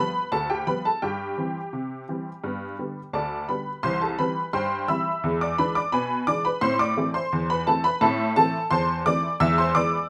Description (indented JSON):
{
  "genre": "ragtime piano",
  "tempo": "86 BPM",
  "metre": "2/4",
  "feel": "straight",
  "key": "C major",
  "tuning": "A4 = 441 Hz",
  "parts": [
    { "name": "honky-tonk upright piano", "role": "solo", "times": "0.0-10.1 s", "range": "C2 to E6", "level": "-25 LUFS", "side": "equal", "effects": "none" }
  ],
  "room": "light reverb",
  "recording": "none",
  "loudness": "-25 LUFS",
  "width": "mono",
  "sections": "0.0-3.8 A section; 3.8-10.1 B section",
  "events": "none",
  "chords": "0.0 G7; 1.0 C/G; 2.4 G; 3.8 C; 5.2 E7; 6.6 Am; 9.4 E7"
}